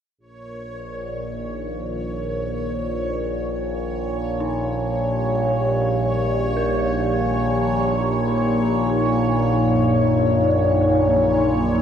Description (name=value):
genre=dark ambient drone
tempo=free time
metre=none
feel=none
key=unclear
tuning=A4 = 442 Hz
part: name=dark analog pad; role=sustained chords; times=0.7-11.8 s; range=Gb2 to G4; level=-24 LUFS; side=equal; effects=chorus, phaser
part: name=overtone-sweeping drone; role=drone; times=0.5-11.8 s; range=Bb1 to Bb2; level=-22 LUFS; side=equal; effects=chorus, built-in reverb
part: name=bubbling stepped-filter texture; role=texture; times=0.2-11.8 s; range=Db5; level=-25 LUFS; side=equal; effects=chorus, built-in reverb
part: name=dark detuned synth bell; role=arpeggios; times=4.4-11.8 s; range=Eb4 to Bb4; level=-35 LUFS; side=left 3 dB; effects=none
room=wet huge ambient reverb, RT60 7.3 s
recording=none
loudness=-19 LUFS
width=side -8 dB against mid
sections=0.2-11.8 A section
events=none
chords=0.2 Eb; 9.5 Gb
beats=free time